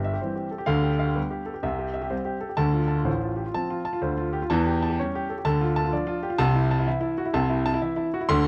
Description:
jazz, stride piano; 127 BPM; 4/4; swing 65% on 8ths; A4 = 440 Hz
warm grand piano; solo; 0.0-8.5 s; G1 to C6; -25 LUFS; equal; tape echo
light reverb; dry, close 1970s-style studio recording; -26 LUFS; mono
0.0-8.5 A section
0.0 C; 0.7 G7/D; 1.6 C; 2.6 Dm7; 4.5 A7/E; 5.4 Dm; 6.4 Am/C

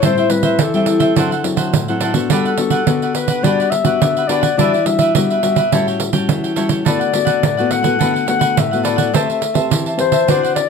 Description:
samba and choro; 105 BPM; 4/4; straight; A4 = 440 Hz
mellow clarinet; second line; 0.0-10.7 s; A4 to F#5; -18 LUFS; left 8 dB
cavaquinho; accompaniment; 0.0-10.6 s; D4 to A5; -22 LUFS; right 5 dB
nylon-string guitar; accompaniment; 0.0-10.7 s; A2 to B4; -19 LUFS; left 3 dB
pandeiro; percussion; 0.0-10.7 s; -18 LUFS; right 6 dB
moderate studio ambience, RT60 0.5 s; -13 LUFS; side -6 dB against mid
0.0-10.7 A section
clarinet solo 0.0-10.7
0.0 Am7; 1.2 D9; 2.3 Gmaj7; 4.6 Em9; 5.7 A6; 6.9 D6; 9.1 Am9

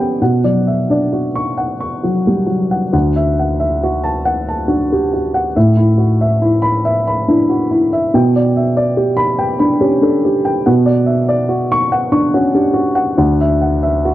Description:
neoclassical minimalist piano; 47 BPM (dotted quarters); 6/8; rubato; D major; A4 = 440 Hz
dark grand piano; solo; 0.0-14.1 s; D2 to C#6; -12 LUFS; equal
small room ambience; dry, close 1970s-style studio recording; -12 LUFS; side -14 dB against mid
0.0-2.9 A section; 2.9-14.1 A section
0.2 Bmadd9; 2.9 Dadd9; 5.6 Asus2; 8.1 G/B; 10.7 Bmadd9; 13.2 Dadd9

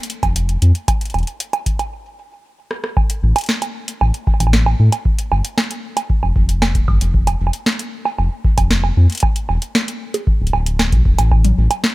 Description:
IDM; 115 BPM; 4/4; straight; A4 = 440 Hz
booming analog drum machine; drums; 0.0-11.9 s; bongos, hi-hat, rim click, snare drum, toms; -20 LUFS; right 2 dB
round analog bass; bass; 0.2-11.7 s; D1 to A2; -15 LUFS; equal
electronic kick drum; drums; 0.2-11.4 s; -17 LUFS; equal
little or no reverb; -14 LUFS; side -19 dB against mid
0.0-3.0 A section; 3.0-11.9 B section
stop 1.9-3.0; drum fill 2.6-3.0

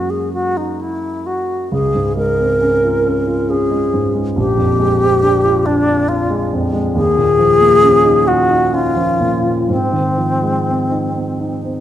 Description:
classical, impressionist duo for alto flute and grand piano; 61-70 BPM; 3/4; rubato; Ab mixolydian; A4 = 435 Hz
bright alto flute; melody; 0.0-11.6 s; C4 to Bb4; -14 LUFS; left 2 dB
warm concert grand piano; accompaniment; 0.0-11.8 s; Bb1 to Gb4; -17 LUFS; right 2 dB
moderate scoring stage reverb, RT60 1.6 s; -13 LUFS; side -11 dB against mid
0.0-11.8 A section
0.0 Gb9; 1.7 Dbmaj7; 4.4 Bb13; 7.0 Eb9sus4; 9.7 Ab6

